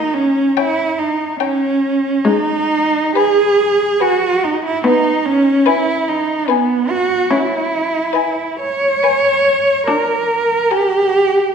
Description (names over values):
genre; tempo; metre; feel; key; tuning
classical, slow romantic movement for string quartet; 71 BPM; 3/4; uneven beats, rubato; G# minor; A4 = 439 Hz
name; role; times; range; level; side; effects
rich viola; accompaniment; 0.0-10.5 s; G#3 to D4; -19 LUFS; left 2 dB; none
warm cello; bass; 0.0-11.5 s; B3 to C#5; -14 LUFS; right 2 dB; none
rich violin; melody; 0.6-11.4 s; G5 to G#5; -23 LUFS; left 13 dB; none
rich violin; second line; 0.6-11.4 s; A#4 to C#5; -24 LUFS; left 7 dB; none
room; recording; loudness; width
wet scoring stage reverb, RT60 1.6 s; recorded in a church or concert hall; -13 LUFS; side -6 dB against mid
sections
0.0-11.5 A section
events
none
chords
0.0 D#7/A#; 2.2 G#m; 4.8 G#m/B; 7.3 C#m7; 9.9 A#7/D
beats
0.56 1.40 | 2.25 3.15 4.00 | 4.84 5.66 6.49 | 7.30 8.15 9.04 | 9.87 10.71